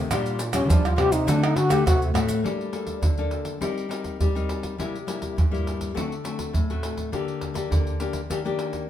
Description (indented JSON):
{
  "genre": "samba and choro",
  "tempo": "102 BPM",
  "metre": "4/4",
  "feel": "straight",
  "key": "G harmonic minor",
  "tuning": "A4 = 439 Hz",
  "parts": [
    { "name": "nylon-string guitar", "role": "accompaniment", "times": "0.0-8.9 s", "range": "G2 to Bb4", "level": "-28 LUFS", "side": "left 4 dB", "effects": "none" },
    { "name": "nylon-string guitar", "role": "bass", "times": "0.1-2.4 s", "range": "A2 to F3", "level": "-26 LUFS", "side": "equal", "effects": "none" },
    { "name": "maracas, surdo, pandeiro and tamborim", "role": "percussion", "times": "0.1-8.9 s", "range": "none", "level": "-25 LUFS", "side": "right 1 dB", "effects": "none" },
    { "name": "mellow trombone", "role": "melody", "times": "0.5-2.0 s", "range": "Db4 to G4", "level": "-23 LUFS", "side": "left 1 dB", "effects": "none" }
  ],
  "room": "wet studio reverb, RT60 0.8 s",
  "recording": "heard from further back in the room",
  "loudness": "-22 LUFS",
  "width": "side -11 dB against mid",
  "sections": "0.0-2.4 A section; 2.4-8.9 B section",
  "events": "trombone solo 0.0-2.4",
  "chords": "0.1 Bb6; 1.3 D7; 2.4 Gmadd9; 3.6 Eb6/G; 4.8 C7; 6.0 D7; 7.1 Gm/D; 8.3 Ebmaj7"
}